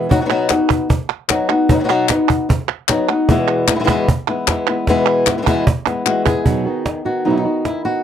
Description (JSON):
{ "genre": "flamenco", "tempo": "151 BPM", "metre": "4/4", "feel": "straight", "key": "unclear", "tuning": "A4 = 442 Hz", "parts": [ { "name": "flamenco guitar", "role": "melody", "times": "0.0-8.0 s", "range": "E2 to G#4", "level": "-16 LUFS", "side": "left 3 dB", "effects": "none" }, { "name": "flamenco guitar", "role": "stabs", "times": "0.0-0.1, 6.5-8.0 s", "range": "B2 to F#4", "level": "-20 LUFS", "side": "right 6 dB", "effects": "none" }, { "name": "cajon", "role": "percussion", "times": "0.1-8.0 s", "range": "none", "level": "-17 LUFS", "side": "right 2 dB", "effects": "none" }, { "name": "palmas hand claps", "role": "percussion", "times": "0.3-6.5 s", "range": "none", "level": "-18 LUFS", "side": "right 3 dB", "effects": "none" } ], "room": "light reverb", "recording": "dry, close 1970s-style studio recording", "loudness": "-14 LUFS", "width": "side -9 dB against mid", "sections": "0.1-6.5 A section; 6.5-8.0 B section", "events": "drum fill 5.9-6.5", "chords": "0.1 B; 3.3 E; 6.5 B", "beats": "| 0.11 0.51 0.90 1.30 | 1.70 2.09 2.49 2.89 | 3.29 3.68 4.08 4.48 | 4.87 5.27 5.67 6.07 | 6.46 6.86 7.26 7.66" }